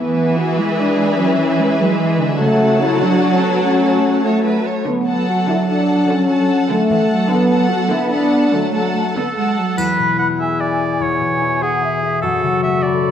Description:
cinematic, heroic adventure film score; 98 BPM (dotted quarters); 6/8; straight; E mixolydian; A4 = 438 Hz
warm symphonic violin section; melody; 0.0-9.8 s; E5 to A5; -27 LUFS; left 3 dB
rich studio violin section; second line; 0.0-9.8 s; G#4 to F#5; -23 LUFS; left 1 dB
rich symphonic viola section; accompaniment; 0.0-9.7 s; D3 to F#3; -22 LUFS; right 1 dB
clear French horn section; sustained chords; 0.0-9.2 s; F#3 to F#4; -17 LUFS; left 2 dB
dark symphonic cello section; bass; 0.0-9.8 s; C#3 to B3; -20 LUFS; right 4 dB
clear oboe; second line; 9.2-13.1 s; G#4 to F#5; -19 LUFS; right 2 dB
flute section; second line; 9.8-13.1 s; E5 to B5; -23 LUFS; left 4 dB
warm clarinet; second line; 9.8-13.1 s; E4 to G#4; -22 LUFS; left 4 dB
concert harp; arpeggios; 9.8-13.1 s; E2 to E5; -22 LUFS; left 7 dB
triangle; percussion; 9.8-10.6 s; -35 LUFS; left 2 dB
wet scoring stage reverb, RT60 1.8 s; dark, warm production; -14 LUFS; side -9 dB against mid
0.0-9.8 A section; 9.8-13.1 A section
0.0 E; 2.4 F#m/C#; 4.9 D6; 9.8 E; 12.2 F#m

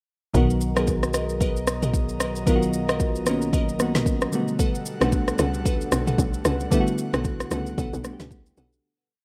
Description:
amapiano; 113 BPM; 4/4; swing 58% on 16ths; B major; A4 = 440 Hz
bell-like FM electric piano; accompaniment; 0.3-8.9 s; D3 to A#4; -29 LUFS; equal; chorus
airy breathy pad; sustained chords; 0.3-8.8 s; B2 to A#5; -37 LUFS; equal; chorus, sidechain pumping
glassy wavetable pluck; stabs; 0.3-8.7 s; A4 to F#5; -35 LUFS; equal; chorus, tape echo
plucky analog bass; bass; 0.3-4.3 s; B1; -31 LUFS; equal
deep house drum kit; drums; 0.3-8.8 s; kick drum, rim click, shaker, snare drum, toms; -27 LUFS; equal
tight log drum bass; bass; 5.0-8.8 s; B1 to C#2; -29 LUFS; equal
light reverb, digital ambience; rough home demo mix; -24 LUFS; mono
0.3-8.8 groove
fade-out 6.7-8.8
0.3 Bmaj7; 4.3 Gmaj9/B

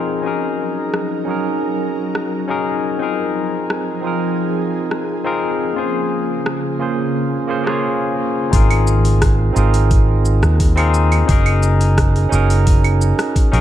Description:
sunset chillout; 87 BPM; 4/4; straight; Ab mixolydian; A4 = 439 Hz
barky tine electric piano; accompaniment; 0.0-13.6 s; Bb3 to Db5; -19 LUFS; moving between left 5 dB and right 6 dB; overdrive, auto-pan, tape echo, shimmer reverb
ethereal airy pad; sustained chords; 0.0-8.5 s; Db3 to Bb4; -25 LUFS; left 2 dB; ensemble chorus, built-in reverb
deep house drum kit; drums; 0.9-13.6 s; cabasa, claves, hi-hat, rim click; -24 LUFS; right 1 dB; overdrive, small room ambience
fretless electric bass; bass; 8.5-13.6 s; Gb1 to Eb2; -14 LUFS; equal
electronic kick drum; drums; 8.5-13.5 s; -15 LUFS; equal; small room ambience
light reverb, digital ambience; dark, warm production; -15 LUFS; side -12 dB against mid
0.0-8.5 A section; 8.5-13.6 B section
0.3 Gb6; 3.0 Ab6; 5.8 Bbm7; 8.5 Ab6; 11.3 Gb6

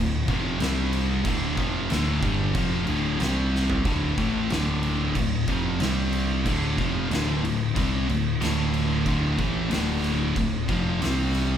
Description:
stoner and doom metal; 92 BPM; 4/4; straight; D minor; A4 = 443 Hz
heavy high-gain guitar; riff; 0.0-11.6 s; D2 to C4; -30 LUFS; equal; distortion
thick fuzz guitar; riff; 0.0-11.6 s; D2 to C4; -29 LUFS; left 8 dB; distortion
thick fuzz guitar; riff; 0.0-11.6 s; D2 to C4; -28 LUFS; right 5 dB; distortion
overdriven fingered electric bass; bass; 0.0-11.6 s; D1 to C2; -30 LUFS; equal; tube saturation
oversized low-tuned drum kit; drums; 0.3-11.5 s; crash cymbal, kick drum, snare drum, toms; -29 LUFS; equal
moderate large studio reverb, RT60 0.8 s; band playing live in one room; -22 LUFS; side -9 dB against mid
0.0-11.6 A section
drum fill 3.5-3.9
0.0 Dm; 0.6 C5; 1.3 Dm; 3.2 C5; 3.9 Dm; 5.8 C5; 6.5 Dm; 11.0 C5

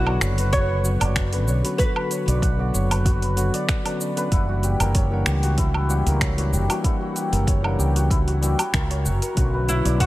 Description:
organic downtempo; 95 BPM; 4/4; swing 54% on 16ths; F# phrygian dominant; A4 = 440 Hz
oud; melody; 0.0-3.0, 9.7-10.1 s; E4 to C#5; -27 LUFS; equal; digital delay, shimmer reverb
tine electric piano; accompaniment; 0.0-10.1 s; D3 to F#5; -28 LUFS; left 1 dB; sidechain pumping, digital delay, shimmer reverb
santur; arpeggios; 0.0-10.1 s; E4 to F#5; -28 LUFS; equal; digital delay, shimmer reverb
mellow fretless electric bass; bass; 0.0-10.1 s; F#1 to C#2; -22 LUFS; equal; sidechain pumping
deep house drum kit; drums; 0.1-10.1 s; cabasa, finger snaps, hi-hat, woodblock; -27 LUFS; right 1 dB
electronic kick drum; drums; 0.5-10.1 s; -22 LUFS; equal
light reverb, digital ambience; -19 LUFS; side -17 dB against mid
0.0-10.1 A section
0.0 Bmadd9; 4.3 F#7b9b13; 9.4 Bmadd9

